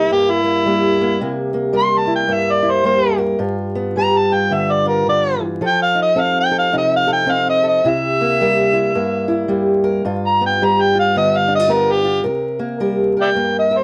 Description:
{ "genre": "acoustic country blues, solo or duo", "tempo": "108 BPM", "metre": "4/4", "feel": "swing 62% on 8ths", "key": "C mixolydian", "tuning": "A4 = 445 Hz", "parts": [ { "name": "overdriven harmonica", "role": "melody", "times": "0.0-13.8 s", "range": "Eb4 to C6", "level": "-18 LUFS", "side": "equal", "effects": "none" }, { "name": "fingerpicked old ladder-braced acoustic guitar", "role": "accompaniment", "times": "0.0-13.8 s", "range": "G2 to B4", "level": "-20 LUFS", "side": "equal", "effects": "none" } ], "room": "moderate studio reverb, RT60 0.6 s", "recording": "vinyl crackle", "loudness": "-17 LUFS", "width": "mono", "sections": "0.0-12.3 A section; 12.3-13.8 B section", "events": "harmonica solo 0.0-12.3", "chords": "0.0 C7; 3.4 G7; 5.6 F7; 7.8 C7; 10.0 G7; 12.3 C7(no3)", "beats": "0.10 0.65 | 1.20 1.76 2.31 2.86 | 3.41 3.97 4.52 5.07 | 5.62 6.18 6.73 7.28 | 7.83 8.39 8.94 9.49 | 10.05 10.60 11.15 11.71 | 12.27 12.82 13.38" }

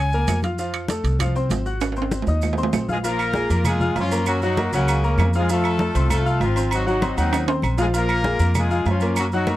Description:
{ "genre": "latin, salsa", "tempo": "196 BPM", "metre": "4/4", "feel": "straight", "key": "Bb minor", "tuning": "A4 = 440 Hz", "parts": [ { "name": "bright upright piano", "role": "accompaniment", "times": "0.0-9.6 s", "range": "F3 to Gb6", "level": "-25 LUFS", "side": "left 1 dB", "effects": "none" }, { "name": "upright bass", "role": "bass", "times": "0.0-9.6 s", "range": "Ab1 to Gb2", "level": "-22 LUFS", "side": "equal", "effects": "none" }, { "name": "congas", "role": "percussion", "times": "0.1-9.6 s", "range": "none", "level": "-28 LUFS", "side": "left 1 dB", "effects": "none" }, { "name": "maracas", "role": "percussion", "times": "0.1-9.6 s", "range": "none", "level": "-38 LUFS", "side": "right 5 dB", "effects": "none" }, { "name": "claves", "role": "percussion", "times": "0.3-9.3 s", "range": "none", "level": "-33 LUFS", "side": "right 11 dB", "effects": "none" }, { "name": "timbales and agogo bells", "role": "percussion", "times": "0.3-9.6 s", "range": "none", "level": "-28 LUFS", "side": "right 5 dB", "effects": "none" }, { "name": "warm horn section", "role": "melody", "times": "2.9-9.6 s", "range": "Db3 to Bb4", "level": "-24 LUFS", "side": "left 2 dB", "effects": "none" } ], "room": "light reverb", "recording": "dry, close 1970s-style studio recording", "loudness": "-18 LUFS", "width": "side -15 dB against mid", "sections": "0.0-3.0 A section; 3.0-9.6 B section", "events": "drum fill 1.8-3.0, 7.3-7.9", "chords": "0.0 Gbadd9 (rootless); 0.6 F; 1.8 Ab7; 3.0 Bbm7; 4.3 Gb; 5.5 F; 6.7 Ab7; 7.9 Bbm7", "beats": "0.28 | 0.59 0.89 1.20 1.51 | 1.81 2.12 2.42 2.73 | 3.04 3.34 3.65 3.96 | 4.26 4.57 4.88 5.18 | 5.49 5.79 6.10 6.41 | 6.71 7.02 7.32 7.63 | 7.94 8.24 8.55 8.86 | 9.16 9.47" }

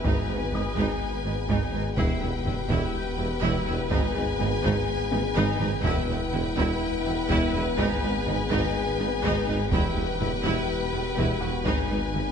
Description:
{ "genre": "cinematic, hybrid orchestral and electronic film score", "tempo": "124 BPM", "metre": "4/4", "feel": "straight", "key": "unclear", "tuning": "A4 = 435 Hz", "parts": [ { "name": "warm symphonic violin section", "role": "melody", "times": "0.0-12.3 s", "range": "G5 to G#5", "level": "-35 LUFS", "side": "left 4 dB", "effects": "none" }, { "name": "clear symphonic violin section", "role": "second line", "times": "0.0-12.3 s", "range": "B4", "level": "-33 LUFS", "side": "left 2 dB", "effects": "none" }, { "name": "clear symphonic viola section", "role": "accompaniment", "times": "0.0-12.2 s", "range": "D#4 to E4", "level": "-33 LUFS", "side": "right 1 dB", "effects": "none" }, { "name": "dark French horn section", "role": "sustained chords", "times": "0.0-12.3 s", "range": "B3 to G#4", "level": "-32 LUFS", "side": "left 6 dB", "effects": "none" }, { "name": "clear symphonic double bass section", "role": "bass", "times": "0.0-12.2 s", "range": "E1 to G#1", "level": "-32 LUFS", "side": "right 4 dB", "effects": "none" }, { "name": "rich symphonic cello section", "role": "bass", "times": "0.0-12.2 s", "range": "E2 to G#2", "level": "-33 LUFS", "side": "right 3 dB", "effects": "none" }, { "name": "swelling detuned saw bass", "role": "bass", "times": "0.0-12.3 s", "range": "E1 to G#1", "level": "-34 LUFS", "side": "equal", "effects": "none" }, { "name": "warm tuba", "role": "bass", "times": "0.0-12.2 s", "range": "E1 to G#1", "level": "-34 LUFS", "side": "right 4 dB", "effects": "none" }, { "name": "taiko ensemble", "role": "drums", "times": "0.0-12.3 s", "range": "none", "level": "-32 LUFS", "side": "equal", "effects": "none" }, { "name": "bright baby grand piano", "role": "texture", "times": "0.0-12.3 s", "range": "D#4 to C7", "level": "-43 LUFS", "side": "left 3 dB", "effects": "none" } ], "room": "wet scoring stage reverb, RT60 1.7 s", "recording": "nothing above 10.8 kHz", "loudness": "-23 LUFS", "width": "side -7 dB against mid", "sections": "0.0-12.3 A section", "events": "drum fill 5.1-5.8", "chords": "0.0 G#m; 2.0 Em; 3.9 G#m; 5.8 Em; 7.8 G#m; 9.7 Em; 11.7 G#m", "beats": "| 0.04 0.53 1.01 1.49 | 1.98 2.46 2.94 3.43 | 3.91 4.40 4.88 5.36 | 5.85 6.33 6.82 7.30 | 7.78 8.27 8.75 9.23 | 9.72 10.20 10.69 11.17 | 11.65 12.14" }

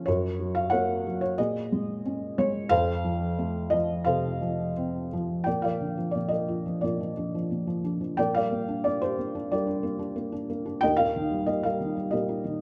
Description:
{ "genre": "classical, lyrical solo piano", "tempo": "90 BPM", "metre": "4/4", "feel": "rubato", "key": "Bb major from 5.5 s", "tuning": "A4 = 436 Hz", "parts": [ { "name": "felt-muted upright piano", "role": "solo", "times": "0.0-12.6 s", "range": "Eb2 to G5", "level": "-28 LUFS", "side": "equal", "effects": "none" } ], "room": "moderate recital hall reverb, RT60 1.3 s", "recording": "close, detailed microphones", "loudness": "-28 LUFS", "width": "mono", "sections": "0.0-5.5 A section; 5.5-12.6 B section", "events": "none", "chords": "0.1 Gb; 1.4 Bbm7; 2.7 F; 5.5 Bb; 8.2 Gm/Bb; 10.8 Eb", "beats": "| 0.07 0.72 1.38 2.05 | 2.71 3.38 4.07 4.76 | 5.47 6.15 6.83 7.51 | 8.18 8.85 9.51 10.16 | 10.82 11.47 12.12" }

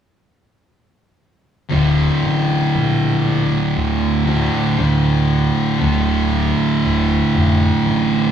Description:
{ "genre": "metal", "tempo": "59 BPM", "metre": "4/4", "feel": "straight", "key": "unclear", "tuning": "A4 = 441 Hz", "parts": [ { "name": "thick fuzz guitar", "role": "riff", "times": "1.7-8.3 s", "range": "D2 to D3", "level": "-19 LUFS", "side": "left 5 dB", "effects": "distortion" }, { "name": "thick fuzz guitar", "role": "riff", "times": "1.7-8.3 s", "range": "D2 to D3", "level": "-18 LUFS", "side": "right 4 dB", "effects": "distortion" }, { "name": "growling fingered electric bass", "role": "bass", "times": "1.7-8.3 s", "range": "D1 to D2", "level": "-21 LUFS", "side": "left 1 dB", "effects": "overdrive" } ], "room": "wet large studio reverb, RT60 1.4 s", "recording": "band playing live in one room, small room ambience", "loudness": "-14 LUFS", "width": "side -9 dB against mid", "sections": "1.7-8.3 A section", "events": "none", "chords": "1.7 D5", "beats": "| 1.72 2.74 3.77 4.79 | 5.81 6.83 7.85" }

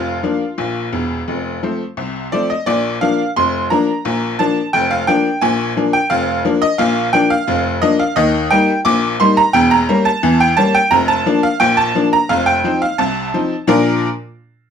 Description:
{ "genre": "ragtime piano", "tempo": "87 BPM", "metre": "2/4", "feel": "straight", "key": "Bb major", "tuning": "A4 = 440 Hz", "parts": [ { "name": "tack piano", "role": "solo", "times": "0.0-14.1 s", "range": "E1 to D6", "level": "-13 LUFS", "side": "equal", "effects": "none" } ], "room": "wet small room reverb, RT60 0.5 s", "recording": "none", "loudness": "-13 LUFS", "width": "side -7 dB against mid", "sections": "0.0-2.7 A section; 2.7-13.7 B section; 13.7-14.7 C section", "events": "none", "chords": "0.0 Bb/F; 1.3 F; 2.7 Bb; 8.2 Eb; 9.5 Edim7; 10.9 Bb/F; 12.3 F7; 13.7 Bb", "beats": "0.58 | 1.28 1.97 | 2.67 3.36 | 4.05 4.74 | 5.42 6.11 | 6.80 7.48 | 8.17 8.86 | 9.54 10.23 | 10.92 11.61 | 12.30 12.99 | 13.69" }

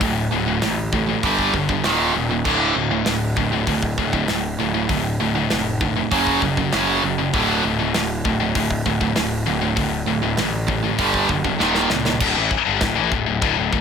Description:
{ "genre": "heavy metal", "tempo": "98 BPM", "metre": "4/4", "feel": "straight", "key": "unclear", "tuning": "A4 = 440 Hz", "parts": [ { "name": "scooped high-gain guitar", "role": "riff", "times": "0.0-13.8 s", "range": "D2 to G3", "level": "-22 LUFS", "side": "left 11 dB", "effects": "distortion" }, { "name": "sludgy distorted guitar", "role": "riff", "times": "0.0-12.2 s", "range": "D2 to G3", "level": "-23 LUFS", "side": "right 10 dB", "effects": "overdrive" }, { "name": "fuzz picked electric bass", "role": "bass", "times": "0.0-13.8 s", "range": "D1 to C#2", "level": "-25 LUFS", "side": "equal", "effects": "overdrive" }, { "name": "modern studio drum kit", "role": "drums", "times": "0.0-13.8 s", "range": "china cymbal, crash cymbal, hi-hat, kick drum, snare drum", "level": "-26 LUFS", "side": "equal", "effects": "none" } ], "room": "light reverb", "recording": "none", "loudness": "-18 LUFS", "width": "side -7 dB against mid", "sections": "0.0-12.2 A section; 12.2-13.8 B section", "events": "drum fill 11.6-12.2", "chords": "0.0 D5; 1.2 G5; 1.8 Eb5; 2.5 D5; 6.1 F#5; 7.3 D5; 11.0 G5; 11.6 Eb5; 12.2 D5", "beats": "| 0.01 0.63 1.24 1.85 | 2.46 3.07 3.68 4.29 | 4.90 5.51 6.12 6.73 | 7.34 7.95 8.56 9.17 | 9.78 10.39 10.99 11.60 | 12.21 12.82 13.43" }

